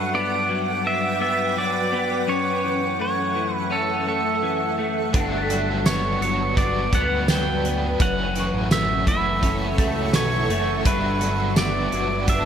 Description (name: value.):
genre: dream pop.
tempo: 84 BPM.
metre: 4/4.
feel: straight.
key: G lydian.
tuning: A4 = 440 Hz.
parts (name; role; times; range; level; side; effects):
pedal steel guitar; melody; 0.0-12.5 s; A4 to G5; -25 LUFS; right 2 dB; digital delay.
shimmering ambient pad; sustained chords; 0.0-12.5 s; A4 to D6; -28 LUFS; right 2 dB; chorus, built-in reverb.
electric guitar at the edge of break-up; arpeggios; 0.0-12.5 s; F#2 to D4; -26 LUFS; left 4 dB; ensemble chorus, digital delay.
biting overdriven guitar; accompaniment; 5.1-12.5 s; F#2 to F#4; -30 LUFS; right 3 dB; tremolo, analog chorus.
fat analog bass; bass; 5.1-12.5 s; F#1 to D2; -27 LUFS; right 1 dB; none.
loose indie drum kit; drums; 5.1-12.4 s; hi-hat, kick drum, snare drum, tambourine; -23 LUFS; right 1 dB; gated reverb.
large celesta; texture; 5.3-12.5 s; A5 to B6; -34 LUFS; right 1 dB; digital delay.
room: moderate lush hall reverb, RT60 2.7 s.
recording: bright 1980s-style digital production, faint mains hum.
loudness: -20 LUFS.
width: side -8 dB against mid.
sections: 0.0-12.5 A section.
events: none.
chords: 0.0 Gmaj7; 2.3 F#m7; 5.1 Gmaj7; 8.0 F#m7; 10.9 Gmaj7.